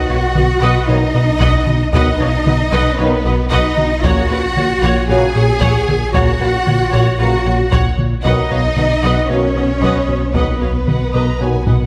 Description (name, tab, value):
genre	cinematic, hybrid orchestral and electronic film score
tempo	114 BPM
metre	4/4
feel	straight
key	unclear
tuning	A4 = 440 Hz
part	clear symphonic violin section	melody	0.0-11.9 s	F5 to Bb5	-31 LUFS	equal	none
part	warm symphonic violin section	second line	0.0-11.9 s	B4 to Ab5	-26 LUFS	equal	none
part	clear symphonic viola section	accompaniment	0.0-11.8 s	B4 to D#5	-25 LUFS	equal	none
part	sub bass with octave	bass	0.0-11.9 s	Bb1 to B1	-24 LUFS	equal	none
part	warm symphonic cello section	bass	0.0-11.9 s	B3 to Ab4	-22 LUFS	equal	none
part	smooth synth bass	riff	0.1-11.8 s	Bb2 to B2	-22 LUFS	equal	none
part	rich symphonic double bass section	bass	0.1-11.7 s	Bb1 to B1	-23 LUFS	equal	none
part	taiko ensemble	drums	0.3-11.9 s	none	-22 LUFS	equal	none
part	dark trombone section	sustained chords	0.9-11.6 s	Db3 to F#3	-27 LUFS	equal	none
part	mellow French horn section	sustained chords	0.9-11.6 s	Bb3 to Gb4	-27 LUFS	equal	none
room	moderate scoring stage reverb, RT60 1.9 s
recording	none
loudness	-15 LUFS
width	mono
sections	0.0-11.9 A section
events	drum fill 11.7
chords	0.0 B; 4.0 Gb/Bb; 8.2 B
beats	0.35 0.88 1.41 | 1.93 2.46 2.98 3.51 | 4.04 4.56 5.09 5.62 | 6.14 6.67 7.20 7.72 | 8.25 8.77 9.30 9.83 | 10.35 10.88 11.40